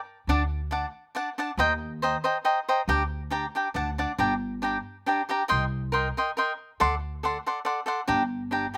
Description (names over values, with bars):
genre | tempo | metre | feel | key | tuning
mexican folk, mariachi | 138 BPM | 3/4 | straight | G harmonic minor | A4 = 440 Hz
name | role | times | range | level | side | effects
cavaquinho | accompaniment | 0.3-8.8 s | D4 to C6 | -27 LUFS | equal | none
upright bass | bass | 0.3-8.7 s | G1 to Eb2 | -33 LUFS | equal | none
room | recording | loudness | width
little or no reverb | recorded outdoors, with no room sound | -27 LUFS | mono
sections
0.0-8.8 A section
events
none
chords
0.3 D; 1.6 Cm7/Eb; 2.9 Gm/D; 3.8 D; 4.2 Gm; 5.5 Cm7; 6.8 D7; 8.1 Gm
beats
| 0.28 0.71 1.14 | 1.57 2.01 2.44 | 2.88 3.31 3.75 | 4.20 4.63 5.07 | 5.51 5.95 6.38 | 6.81 7.24 7.66 | 8.09 8.52